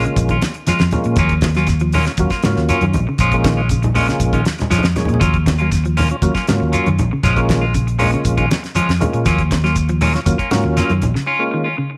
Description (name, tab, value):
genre	afrobeat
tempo	119 BPM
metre	4/4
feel	straight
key	Eb minor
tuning	A4 = 440 Hz
part	percussive tonewheel organ	accompaniment	0.0-11.7 s	Gb3 to Ab4	-25 LUFS	equal	overdrive, chorus vibrato, slow rotary speaker
part	semi-hollow electric guitar	stabs	0.0-11.9 s	F3 to F4	-24 LUFS	equal	slapback echo
part	fingered electric bass	bass	0.0-11.1 s	Bb1 to Bb2	-20 LUFS	equal	none
part	damped 70s drum kit	drums	0.0-11.2 s	hi-hat, kick drum, snare drum	-24 LUFS	equal	none
part	clean electric guitar	arpeggios	0.1-12.0 s	Db3 to Ab3	-26 LUFS	equal	none
part	congas	percussion	0.2-11.2 s	none	-25 LUFS	equal	none
part	shekere	percussion	0.2-11.2 s	none	-27 LUFS	equal	none
room	light reverb, studio ambience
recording	none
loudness	-16 LUFS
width	mono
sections	0.0-12.0 A section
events	drum fill 4.5-5.2; tonewheel organ fill 11.8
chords	0.0 Bbm7; 1.2 Ebm9; 3.2 Bbm7; 5.2 Ebm9; 7.2 Bbm7; 9.3 Ebm9; 11.3 Bbm7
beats	0.16 0.67 | 1.17 1.68 2.18 2.69 | 3.19 3.70 4.20 4.71 | 5.22 5.72 6.23 6.73 | 7.24 7.75 8.25 8.76 | 9.26 9.77 10.27 10.78 | 11.28 11.79